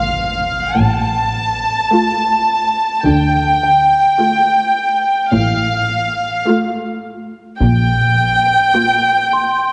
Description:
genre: cinematic, suspense film score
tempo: 53 BPM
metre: 4/4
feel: straight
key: D minor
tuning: A4 = 440 Hz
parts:
  - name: muted chamber violin section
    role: melody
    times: 0.0-9.7 s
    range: F5 to A5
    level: -17 LUFS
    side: equal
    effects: none
  - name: muted chamber viola section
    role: accompaniment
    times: 0.0-9.6 s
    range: A3 to F4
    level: -23 LUFS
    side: equal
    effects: none
  - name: impact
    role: sound effects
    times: 0.0-3.0 s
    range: none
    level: -32 LUFS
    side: equal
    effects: none
  - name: celesta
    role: texture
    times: 0.0-9.7 s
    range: G5 to C6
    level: -20 LUFS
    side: equal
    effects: none
  - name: muted chamber cello section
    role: bass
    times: 0.8-8.5 s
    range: A2 to D3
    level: -22 LUFS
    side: equal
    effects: none
  - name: muted chamber double bass section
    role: bass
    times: 0.8-8.5 s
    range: A1 to D2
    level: -21 LUFS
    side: equal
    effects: none
  - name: taiko ensemble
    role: drums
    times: 7.6-9.7 s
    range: none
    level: -26 LUFS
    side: equal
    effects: none
room: wet concert hall reverb, RT60 1.9 s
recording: heavily compressed radio sound, multiband compression, nothing above 10.7 kHz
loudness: -15 LUFS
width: mono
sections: 0.0-9.7 A section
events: impact 0.0-3.0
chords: 0.0 Dm; 7.6 Bb5

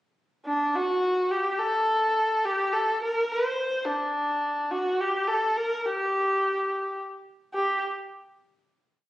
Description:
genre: persian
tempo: 70 BPM (dotted quarters)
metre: 6/8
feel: straight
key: G avaz esfahan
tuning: A4 = 439 Hz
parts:
  - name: warm kamancheh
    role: solo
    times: 0.5-7.8 s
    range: D4 to C5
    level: -24 LUFS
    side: equal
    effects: none
room: moderate studio reverb, RT60 0.6 s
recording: recorded on a phone in the room, studio reverb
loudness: -24 LUFS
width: side -15 dB against mid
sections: 0.0-0.7 pickup bar; 0.7-7.5 A section; 7.5-9.1 final note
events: none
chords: none

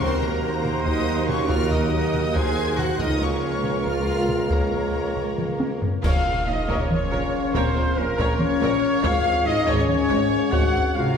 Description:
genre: cinematic, epic orchestral film score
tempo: 280 BPM (eighths)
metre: 7/8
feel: straight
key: Bb minor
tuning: A4 = 444 Hz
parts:
  - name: warm symphonic violin section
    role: melody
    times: 0.0-11.2 s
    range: Bb4 to Ab6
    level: -32 LUFS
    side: left 4 dB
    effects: none
  - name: rich symphonic violin section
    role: second line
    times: 0.0-11.2 s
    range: Bb4 to Ab5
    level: -34 LUFS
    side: left 2 dB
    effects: none
  - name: rich symphonic viola section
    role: accompaniment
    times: 0.0-11.0 s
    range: Db4 to Eb5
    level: -32 LUFS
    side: right 1 dB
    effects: none
  - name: dark French horn section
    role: sustained chords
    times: 0.0-11.2 s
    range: Bb3 to Ab4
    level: -28 LUFS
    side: left 6 dB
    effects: none
  - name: warm trombone section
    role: sustained chords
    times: 0.0-11.2 s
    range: Db3 to Db4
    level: -33 LUFS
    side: right 3 dB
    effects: none
  - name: warm woodwind section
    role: sustained chords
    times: 0.0-11.2 s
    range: Bb3 to Gb5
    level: -33 LUFS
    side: right 1 dB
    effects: none
  - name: warm trumpet section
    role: stabs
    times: 0.0-11.2 s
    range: Bb4 to Gb5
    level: -30 LUFS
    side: right 1 dB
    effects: none
  - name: clear tuba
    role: bass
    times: 0.0-11.0 s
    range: Ab1 to Eb2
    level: -29 LUFS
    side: right 1 dB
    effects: none
  - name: rich symphonic cello section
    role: bass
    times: 0.0-11.2 s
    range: Ab2 to Ab4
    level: -31 LUFS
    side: right 2 dB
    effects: none
  - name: rich symphonic double bass section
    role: bass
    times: 0.0-11.0 s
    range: Ab1 to Eb2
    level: -30 LUFS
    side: right 2 dB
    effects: none
  - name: taiko ensemble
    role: drums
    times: 0.0-10.9 s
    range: none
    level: -26 LUFS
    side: equal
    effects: none
  - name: silver concert flute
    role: second line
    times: 6.0-11.2 s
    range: Bb4 to Gb5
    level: -32 LUFS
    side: left 1 dB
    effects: none
  - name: clash cymbals and concert bass drum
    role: percussion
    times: 6.0-6.9 s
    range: none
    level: -32 LUFS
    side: equal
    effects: none
room: wet scoring stage reverb, RT60 1.8 s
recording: heard from further back in the room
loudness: -20 LUFS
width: side -7 dB against mid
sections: 0.0-6.0 A section; 6.0-11.2 B section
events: drum fill 5.4-6.0; band accent 6.0-6.5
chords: 0.0 Ebm; 3.0 Bbm/Db; 6.0 Bbm; 9.0 Db/Ab

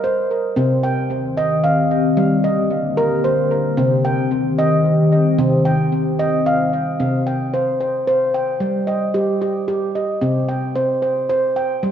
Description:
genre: world meditative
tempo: 75 BPM (dotted quarters)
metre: 6/8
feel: straight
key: C minor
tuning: A4 = 441 Hz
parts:
  - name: handpan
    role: arpeggios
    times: 0.0-11.9 s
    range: C3 to G5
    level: -17 LUFS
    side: right 1 dB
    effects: tape echo
  - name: deep dark ambient pad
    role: sustained chords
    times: 1.3-7.0 s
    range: D3 to G4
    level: -19 LUFS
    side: left 2 dB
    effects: chorus, built-in reverb
room: wet echo chamber reverb, RT60 2.4 s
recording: echo-heavy mix, cassette tape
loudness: -16 LUFS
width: side -9 dB against mid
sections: 0.0-7.0 A section; 7.0-11.9 B section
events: none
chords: 0.0 Gm; 0.6 Cm; 2.2 Gm; 3.8 Cm; 7.0 C5; 8.6 Eb/G; 10.2 Cm

